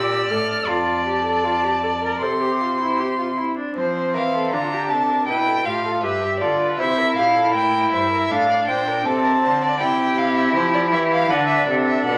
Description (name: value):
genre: classical, baroque-style fugue for string quartet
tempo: 79 BPM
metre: 4/4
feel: straight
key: F major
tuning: A4 = 439 Hz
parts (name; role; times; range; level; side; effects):
- warm violin; melody; 0.0-12.2 s; C5 to F6; -24 LUFS; equal; none
- rich violin; second line; 0.0-12.2 s; F4 to D5; -29 LUFS; equal; none
- rich viola; accompaniment; 0.0-12.2 s; C4 to Bb4; -25 LUFS; equal; none
- rich cello; bass; 0.0-12.2 s; F2 to F3; -28 LUFS; equal; none
room: moderate large studio reverb, RT60 1.3 s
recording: vinyl crackle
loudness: -20 LUFS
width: mono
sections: 0.0-3.8 A section; 3.8-12.2 B section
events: none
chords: 0.0 Gm7; 0.7 F; 2.2 C; 3.8 F; 5.3 G7; 6.8 C7; 8.3 F/A; 9.8 C; 11.3 D7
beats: | 0.68 1.44 2.21 2.99 | 3.77 4.52 5.28 6.03 | 6.79 7.54 8.30 9.05 | 9.80 10.55 11.30 12.06